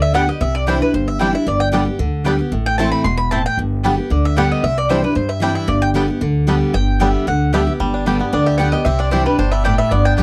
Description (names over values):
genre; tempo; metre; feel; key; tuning
bluegrass; 227 BPM; 4/4; straight; G major; A4 = 438 Hz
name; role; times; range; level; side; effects
mandolin; melody; 0.0-10.1 s; B4 to C6; -22 LUFS; equal; none
picked steel-string acoustic guitar; accompaniment; 0.0-10.2 s; G2 to G4; -21 LUFS; equal; none
upright bass; bass; 0.0-10.2 s; E1 to G2; -22 LUFS; equal; none
bluegrass banjo; arpeggios; 0.1-10.2 s; G3 to G4; -26 LUFS; equal; none
mandolin; stabs; 0.1-10.2 s; B3 to A5; -24 LUFS; equal; none
room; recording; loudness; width
little or no reverb; dry, close 1970s-style studio recording; -17 LUFS; mono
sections
0.0-7.8 A section; 7.8-10.2 A section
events
none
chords
0.4 Cadd9; 1.5 G; 2.5 Am; 3.6 G; 4.6 Cadd9; 5.7 G; 8.9 Cadd9